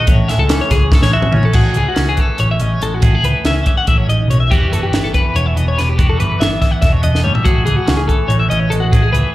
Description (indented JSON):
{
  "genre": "math rock and midwest emo",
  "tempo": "285 BPM (eighths)",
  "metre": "7/8",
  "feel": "straight",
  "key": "A lydian",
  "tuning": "A4 = 440 Hz",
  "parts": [
    { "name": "twangy electric guitar", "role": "accompaniment", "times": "0.0-9.3 s", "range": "E2 to G#4", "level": "-22 LUFS", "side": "right 3 dB", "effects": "phaser, slapback echo" },
    { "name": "twelve-string electric guitar", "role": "arpeggios", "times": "0.0-9.3 s", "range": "F#4 to F#5", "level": "-19 LUFS", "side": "left 4 dB", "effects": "harmonic tremolo, slapback echo" },
    { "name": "hollow-body short-scale picked electric bass", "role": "bass", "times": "0.0-9.2 s", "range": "E1 to C#2", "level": "-15 LUFS", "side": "equal", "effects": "none" },
    { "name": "compact cocktail drum kit", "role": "drums", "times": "0.1-9.2 s", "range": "crash cymbal, hi-hat, kick drum, snare drum, toms", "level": "-15 LUFS", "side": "equal", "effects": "none" }
  ],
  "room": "studio reverb",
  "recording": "live gig heard through the venue's PA, club reverb",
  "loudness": "-12 LUFS",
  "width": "side -16 dB against mid",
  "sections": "0.0-1.6 A section; 1.6-9.3 B section",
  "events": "drum fill 0.9-1.6, 7.1-7.5",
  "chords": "0.1 Amaj7; 4.5 Emadd9; 7.5 Amaj7"
}